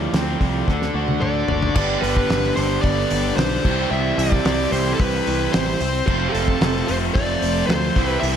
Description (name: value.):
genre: classic rock.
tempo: 111 BPM.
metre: 4/4.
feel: straight.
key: G mixolydian.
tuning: A4 = 439 Hz.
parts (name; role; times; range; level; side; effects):
overdriven semi-hollow guitar; riff; 0.0-8.4 s; F2 to G4; -25 LUFS; right 10 dB; slapback echo.
tight distorted guitar; riff; 0.0-8.4 s; G2 to F4; -26 LUFS; left 10 dB; distortion, slapback echo.
picked electric bass; bass; 0.0-8.4 s; F1 to D2; -24 LUFS; equal; none.
damped 70s drum kit; drums; 0.1-8.4 s; crash cymbal, hi-hat, kick drum, snare drum, toms; -24 LUFS; equal; none.
fuzz lead guitar; melody; 1.2-8.4 s; G4 to E5; -24 LUFS; equal; distortion.
overdriven tonewheel organ; sustained chords; 1.8-8.4 s; G3 to E5; -34 LUFS; equal; none.
room: moderate lush hall reverb, RT60 1.6 s, studio reverb.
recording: big arena sound.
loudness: -17 LUFS.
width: side -8 dB against mid.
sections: 0.0-1.8 A section; 1.8-8.4 B section.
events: drum fill 0.7-1.8.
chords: 0.0 Fadd9; 0.7 D; 1.8 G; 3.6 C; 6.1 F.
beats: 0.13 0.67 1.21 | 1.75 2.29 2.84 3.38 | 3.92 4.46 5.00 5.54 | 6.08 6.62 7.15 7.69 | 8.23.